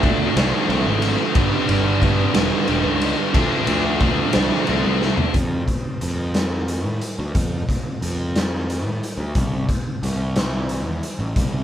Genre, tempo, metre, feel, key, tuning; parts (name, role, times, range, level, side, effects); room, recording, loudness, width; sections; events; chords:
quiet-loud alternative rock; 60 BPM (dotted quarters); 6/8; straight; D dorian; A4 = 440 Hz
crunchy overdriven guitar; riff; 0.0-5.3 s; G2 to D4; -24 LUFS; right 8 dB
crunchy overdriven guitar; riff; 0.0-5.3 s; G2 to D4; -26 LUFS; right 1 dB
scooped high-gain guitar; riff; 0.0-5.3 s; G2 to D4; -24 LUFS; left 9 dB; distortion
fuzz picked electric bass; bass; 0.0-11.6 s; E1 to A2; -24 LUFS; equal; overdrive
raw garage drum kit; drums; 0.0-11.5 s; hi-hat, kick drum, ride cymbal, snare drum, toms; -22 LUFS; equal
moderate studio reverb, RT60 0.5 s; band playing live in one room; -18 LUFS; side -10 dB against mid
0.0-5.3 A section; 5.3-11.6 B section
drum fill 5.0-5.3
0.0 Dm; 1.4 G; 3.4 Dm; 5.3 N.C.